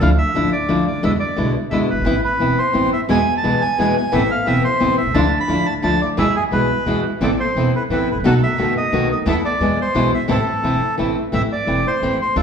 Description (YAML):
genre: tango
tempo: 175 BPM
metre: 3/4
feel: rubato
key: A harmonic minor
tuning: A4 = 440 Hz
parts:
  - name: bandoneon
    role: melody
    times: 0.0-12.4 s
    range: G#4 to B5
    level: -20 LUFS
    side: right 1 dB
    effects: none
  - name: nylon-string guitar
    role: accompaniment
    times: 0.0-12.4 s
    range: B2 to F#4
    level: -19 LUFS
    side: left 2 dB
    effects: none
  - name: upright bass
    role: bass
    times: 0.0-12.4 s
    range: E1 to E2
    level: -23 LUFS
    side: right 1 dB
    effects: none
  - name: warm studio string section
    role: stabs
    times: 3.1-11.1 s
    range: B3 to A4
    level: -26 LUFS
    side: right 3 dB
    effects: none
room: wet large studio reverb, RT60 1.2 s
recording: heard from further back in the room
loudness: -15 LUFS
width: side -7 dB against mid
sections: 0.0-11.3 A section; 11.3-12.4 A section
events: none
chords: 0.0 Dmadd9; 1.0 E7; 2.1 Amadd9; 3.1 E; 4.1 Amadd9; 5.2 Dmadd9; 6.2 E; 7.2 Amadd9; 8.2 B7; 9.3 Esus4; 9.6 E; 10.3 Am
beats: | 0.02 0.36 0.69 | 1.03 1.37 1.71 | 2.05 2.40 2.74 | 3.09 3.44 3.79 | 4.13 4.47 4.81 | 5.15 5.49 5.83 | 6.18 6.52 6.87 | 7.21 7.56 7.91 | 8.25 8.59 8.93 | 9.27 9.61 9.95 | 10.29 10.63 10.98 | 11.33 11.68 12.02 | 12.36